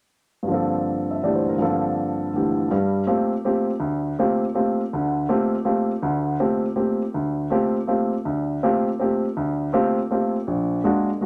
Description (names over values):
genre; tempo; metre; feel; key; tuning
jazz; 162 BPM; 3/4; swing 64% on 8ths; G dorian; A4 = 440 Hz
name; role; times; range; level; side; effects
warm baby grand piano; solo; 0.4-11.3 s; Bb1 to E5; -23 LUFS; equal; none
room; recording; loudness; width
moderate large studio reverb, RT60 1.1 s; none; -23 LUFS; mono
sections
0.5-2.7 A section; 2.7-11.3 B section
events
none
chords
0.5 Gm11; 10.5 Bb7b13